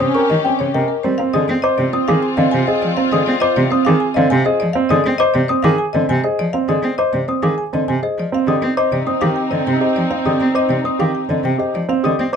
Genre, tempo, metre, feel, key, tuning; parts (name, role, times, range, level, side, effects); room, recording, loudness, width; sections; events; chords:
classical, minimalist pattern music; 101 BPM; 3/4; straight; Ab lydian; A4 = 440 Hz
marimba with medium hard mallets; melody; 0.0-12.4 s; Bb4 to Ab5; -22 LUFS; left 9 dB
rich cello; accompaniment; 0.0-12.3 s; C3 to C4; -19 LUFS; equal
rich studio string section; sustained chords; 0.0-4.6, 8.3-11.7 s; C4 to G4; -25 LUFS; left 2 dB
trough xylophone with soft rubber mallets; arpeggios; 0.0-12.4 s; Eb5 to Eb6; -23 LUFS; left 4 dB
warm grand piano; arpeggios; 0.0-12.4 s; C4 to C5; -20 LUFS; right 6 dB
warm clarinet; second line; 0.1-4.6, 8.3-11.7 s; C4 to Db4; -24 LUFS; right 4 dB
moderate studio ambience, RT60 0.5 s; dark, warm production; -14 LUFS; side -7 dB against mid
0.0-1.2 A section; 1.2-12.4 B section
0.0 Eb7; 1.2 Ab6; 8.3 Cmadd9